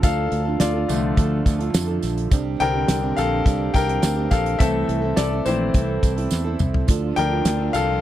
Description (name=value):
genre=piano-driven pop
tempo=105 BPM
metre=4/4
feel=straight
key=D minor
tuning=A4 = 440 Hz
part: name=clear grand piano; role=accompaniment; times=0.0-8.0 s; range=D3 to G5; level=-23 LUFS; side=left 4 dB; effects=none
part: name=fingerpicked plugged-in steel-string acoustic guitar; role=riff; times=0.0-8.0 s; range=F3 to A4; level=-27 LUFS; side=right 9 dB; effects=none
part: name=fingered electric bass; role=bass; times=0.0-8.0 s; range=Bb1 to F2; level=-24 LUFS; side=equal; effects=none
part: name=damped 70s drum kit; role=drums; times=0.0-7.9 s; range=hi-hat, kick drum, snare drum, toms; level=-19 LUFS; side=equal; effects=none
part: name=tambourine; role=percussion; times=0.0-7.9 s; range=none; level=-35 LUFS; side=right 14 dB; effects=none
part: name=dark studio string section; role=sustained chords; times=6.9-8.0 s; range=D3 to F4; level=-35 LUFS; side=equal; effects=none
room=little or no reverb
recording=dry, close 1970s-style studio recording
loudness=-18 LUFS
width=side -12 dB against mid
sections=0.0-8.0 A section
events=grand piano solo 0.0-8.0; drum fill 6.3-6.9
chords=0.0 Dm; 4.6 Am; 6.9 Dm